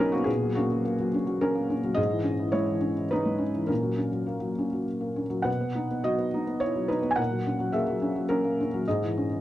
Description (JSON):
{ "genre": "neoclassical minimalist piano", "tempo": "101-110 BPM", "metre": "3/4", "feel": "rubato", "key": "unclear", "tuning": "A4 = 440 Hz", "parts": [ { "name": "felt-muted upright piano", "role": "solo", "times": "0.0-9.4 s", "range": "G#2 to G#5", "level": "-25 LUFS", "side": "equal", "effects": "none" } ], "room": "small room reverb", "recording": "dry, close 1970s-style studio recording", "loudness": "-25 LUFS", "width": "side -14 dB against mid", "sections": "0.0-9.4 A section", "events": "none", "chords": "0.3 F#/A#; 2.0 C#madd9/G#; 3.7 F#/A#; 5.5 B; 7.2 F#/A#; 8.9 C#madd9/G#" }